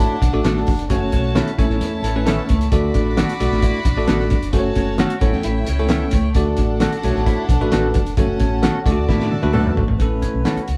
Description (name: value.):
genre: uptempo 1960s-style soul.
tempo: 132 BPM.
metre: 4/4.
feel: straight.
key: D major.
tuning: A4 = 440 Hz.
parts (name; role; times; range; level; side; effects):
warm studio violin section; second line; 0.0-10.0 s; C#4 to B5; -30 LUFS; equal; none.
bell-like tine electric piano; accompaniment; 0.0-10.6 s; A3 to D5; -24 LUFS; equal; none.
mellow electric guitar; riff; 0.0-10.8 s; A3 to F#4; -31 LUFS; equal; vibrato effect.
vintage muted fingered electric bass; bass; 0.0-10.8 s; F1 to A2; -24 LUFS; equal; none.
cloth-damped thuddy drum kit; drums; 0.2-10.8 s; hi-hat, kick drum, snare drum, toms; -22 LUFS; equal; none.
semi-hollow electric guitar; stabs; 0.4-10.6 s; A3 to A4; -26 LUFS; equal; warbly pitch drift.
mellow horn section; second line; 2.0-2.6, 9.3-10.7 s; E3 to B4; -32 LUFS; equal; none.
room: moderate small room reverb, RT60 0.5 s.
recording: band playing live in one room.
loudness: -18 LUFS.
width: mono.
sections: 0.0-10.0 A section.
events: band accent 0.9-2.7, 8.2-10.0; drum fill 9.1-10.0.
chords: 0.0 D; 0.9 F#m; 1.6 A; 2.7 D; 4.5 F#m; 5.2 A; 6.4 D; 8.2 F#m; 8.9 D; 10.0 A.